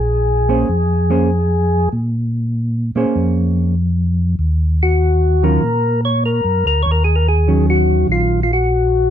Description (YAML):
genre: jazz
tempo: 97 BPM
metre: 4/4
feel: swing 67% on 8ths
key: Bb minor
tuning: A4 = 440 Hz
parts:
  - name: percussive tonewheel organ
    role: melody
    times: 0.0-9.1 s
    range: F4 to Db5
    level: -17 LUFS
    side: left 2 dB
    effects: slow rotary speaker
  - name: mellow tonewheel organ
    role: bass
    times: 0.0-9.1 s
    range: Bb1 to Bb2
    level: -16 LUFS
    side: equal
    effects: chorus vibrato, slow rotary speaker
  - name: hollow-body jazz guitar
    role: accompaniment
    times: 0.5-8.4 s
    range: Eb3 to C5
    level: -18 LUFS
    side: right 3 dB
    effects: none
room: light reverb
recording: dark, warm production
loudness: -14 LUFS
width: side -10 dB against mid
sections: 0.0-9.1 A section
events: none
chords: 0.0 Bbm9; 4.4 Ebm7